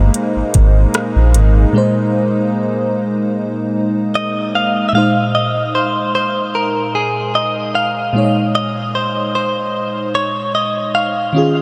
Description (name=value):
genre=contemporary R&B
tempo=75 BPM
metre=4/4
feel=swing 54% on 16ths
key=unclear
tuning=A4 = 441 Hz
part: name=FM electric piano with soft pad layer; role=accompaniment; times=0.0-11.6 s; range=Bb2 to Eb5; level=-21 LUFS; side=equal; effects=chorus
part: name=warm analog pad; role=sustained chords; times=0.0-4.9 s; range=Ab3 to Eb4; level=-23 LUFS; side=equal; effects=chorus
part: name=round analog bass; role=bass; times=0.0-1.7 s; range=G1 to Bb1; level=-13 LUFS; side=equal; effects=none
part: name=smooth R&B drum kit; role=drums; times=0.1-1.5 s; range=hi-hat, kick drum, rim click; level=-20 LUFS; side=equal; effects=none
part: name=direct-recorded clean electric guitar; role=melody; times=4.2-11.6 s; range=Ab4 to F5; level=-19 LUFS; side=equal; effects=diffuse ambient delay
room=wet huge ambient reverb, RT60 8.2 s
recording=dreamy mix soaked in reverb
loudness=-16 LUFS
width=mono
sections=0.0-4.9 A section; 4.9-11.6 B section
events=break 1.7-4.9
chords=0.0 Bb9sus4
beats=0.14 0.94 | 1.74 2.54 3.34 4.14 | 4.94 5.74 6.54 7.34 | 8.14 8.94 9.74 10.54 | 11.34